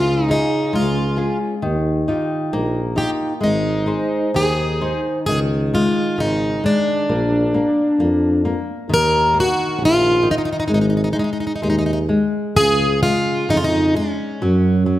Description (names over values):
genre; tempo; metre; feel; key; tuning
fado-style ballad; 66 BPM; 2/4; rubato; Ab major, Db major from 5.3 s; A4 = 441 Hz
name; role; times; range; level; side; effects
picked plugged-in twelve-string acoustic guitar; melody; 0.0-15.0 s; Db4 to Bb4; -18 LUFS; equal; none
flamenco guitar; accompaniment; 0.0-15.0 s; Db3 to C5; -22 LUFS; left 1 dB; none
mellow tuba; bass; 0.0-15.0 s; Ab1 to Gb2; -21 LUFS; right 1 dB; none
room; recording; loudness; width
moderate recital hall reverb, RT60 1.6 s; none; -16 LUFS; side -14 dB against mid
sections
0.0-5.3 A section; 5.3-15.0 B section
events
none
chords
0.0 Db; 1.6 Ebadd9; 3.4 Ab; 5.3 Dbsus2; 7.1 Bb; 8.9 Eb5; 10.7 Ab5; 12.6 Db; 14.4 Gb5